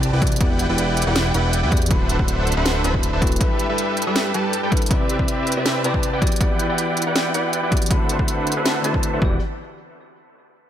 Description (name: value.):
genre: future bass.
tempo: 160 BPM.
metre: 4/4.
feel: half-time.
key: E minor.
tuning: A4 = 442 Hz.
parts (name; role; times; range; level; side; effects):
bell-like tine electric piano; accompaniment; 0.0-9.4 s; C3 to B5; -26 LUFS; left 3 dB; sidechain pumping, dub echo.
dense compressed supersaw; riff; 0.0-9.4 s; G3 to B5; -22 LUFS; right 1 dB; sidechain pumping, low-pass filter, dub echo.
fat analog bass; bass; 0.0-3.4, 9.2-9.4 s; D1 to E2; -22 LUFS; equal; sidechain pumping.
trap drum kit; drums; 0.0-9.1 s; hi-hat, snare drum; -25 LUFS; right 1 dB; none.
electronic kick drum; drums; 0.2-9.3 s; none; -20 LUFS; equal; overdrive.
room: light reverb.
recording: none.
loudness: -17 LUFS.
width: side -10 dB against mid.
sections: 0.0-9.4 A section; 9.4-10.7 B section.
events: filter sweep on supersaw synth 0.0-9.4.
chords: 0.2 Em7; 1.9 D13; 3.4 G6; 4.9 Cmaj9; 6.2 Em7; 7.9 D13; 9.2 Em7; 9.4 N.C..